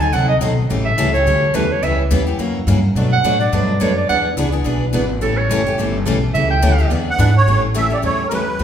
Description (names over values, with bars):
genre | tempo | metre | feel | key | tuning
acoustic string swing (jazz manouche) | 213 BPM | 4/4 | swing 58% on 8ths | A mixolydian | A4 = 439 Hz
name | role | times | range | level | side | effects
clear clarinet | second line | 0.0-6.9 s | A4 to G#5 | -19 LUFS | right 2 dB | none
picked steel-string acoustic guitar | accompaniment | 0.0-8.6 s | B2 to A4 | -22 LUFS | left 4 dB | none
upright bass | bass | 0.0-8.6 s | F#1 to B2 | -18 LUFS | equal | none
picked steel-string acoustic guitar | accompaniment | 0.1-8.6 s | B2 to B4 | -24 LUFS | right 2 dB | none
musette accordion | melody | 7.1-8.6 s | Bb4 to F#5 | -18 LUFS | right 2 dB | none
room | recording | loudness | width
wet large studio reverb, RT60 1.3 s | band playing live in one room | -14 LUFS | side -9 dB against mid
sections
0.0-7.5 A section; 7.5-8.6 B section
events
clarinet solo 0.0-7.5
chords
0.0 D#dim7; 0.7 A7; 1.8 C#m7b5; 2.4 F#7b9; 3.0 Bm7; 4.1 E7; 5.2 A7; 6.9 E7; 7.5 A7